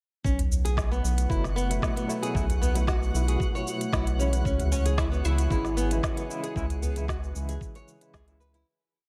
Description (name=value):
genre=organic downtempo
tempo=114 BPM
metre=4/4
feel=straight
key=C# minor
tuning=A4 = 440 Hz
part: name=warbly tape-like pad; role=sustained chords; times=0.7-8.6 s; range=A3 to G#5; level=-42 LUFS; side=equal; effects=chorus, built-in reverb, phaser, sidechain pumping
part: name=nylon-string guitar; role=arpeggios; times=0.2-8.7 s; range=B3 to C#5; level=-37 LUFS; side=equal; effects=digital delay
part: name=round analog bass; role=bass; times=0.2-8.6 s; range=F#1 to C#2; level=-29 LUFS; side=equal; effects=sidechain pumping
part: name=electronic kick drum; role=drums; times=0.2-8.2 s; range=none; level=-32 LUFS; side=equal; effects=none
part: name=twinkling granular texture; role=texture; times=1.0-8.7 s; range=F#4 to F#5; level=-42 LUFS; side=equal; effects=built-in reverb
part: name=organic electronic drum kit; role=drums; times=0.3-8.6 s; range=cabasa, hi-hat, snare drum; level=-38 LUFS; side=equal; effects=none
part: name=udu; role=percussion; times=0.4-6.9 s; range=none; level=-35 LUFS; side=equal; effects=none
part: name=barky tine electric piano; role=accompaniment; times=1.3-8.7 s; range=B2 to E4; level=-38 LUFS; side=equal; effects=medium tremolo, sidechain pumping, digital delay
part: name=oud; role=melody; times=4.7-8.1 s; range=C#4 to E4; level=-36 LUFS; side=equal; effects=tape echo
room=light reverb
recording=none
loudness=-27 LUFS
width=mono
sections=0.2-8.7 groove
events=fade-out 5.9-8.7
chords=0.2 B7sus4; 4.5 C#m